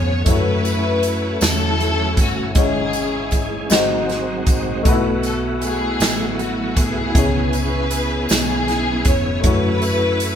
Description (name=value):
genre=slow gospel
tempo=52 BPM (dotted quarters)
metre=6/8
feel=straight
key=C# minor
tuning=A4 = 440 Hz
part: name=warm studio string section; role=melody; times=0.0-10.4 s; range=B3 to C#5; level=-22 LUFS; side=left 2 dB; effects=none
part: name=warm upright piano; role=accompaniment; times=0.0-10.4 s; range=G#2 to C#5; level=-23 LUFS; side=left 4 dB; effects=none
part: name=bright tonewheel organ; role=sustained chords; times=0.0-10.4 s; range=D#3 to G#4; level=-25 LUFS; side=right 2 dB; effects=fast rotary speaker, overdrive, chorus vibrato
part: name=hollow-body short-scale fingered electric bass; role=bass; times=0.0-10.4 s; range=E#1 to F#2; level=-24 LUFS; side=equal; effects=none
part: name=swinging big-band drum kit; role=drums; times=0.3-10.4 s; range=hi-hat, kick drum, snare drum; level=-20 LUFS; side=right 1 dB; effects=none
part: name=tambourine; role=percussion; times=0.7-10.4 s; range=none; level=-32 LUFS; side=left 2 dB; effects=none
room=moderate stone room reverb, RT60 1.3 s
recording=band playing live in one room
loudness=-16 LUFS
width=side -8 dB against mid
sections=0.0-10.4 A section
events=none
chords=0.3 F#m7; 2.6 C#m/G#; 3.7 G#7; 4.8 B7sus4; 7.1 C#m7; 9.4 F#m7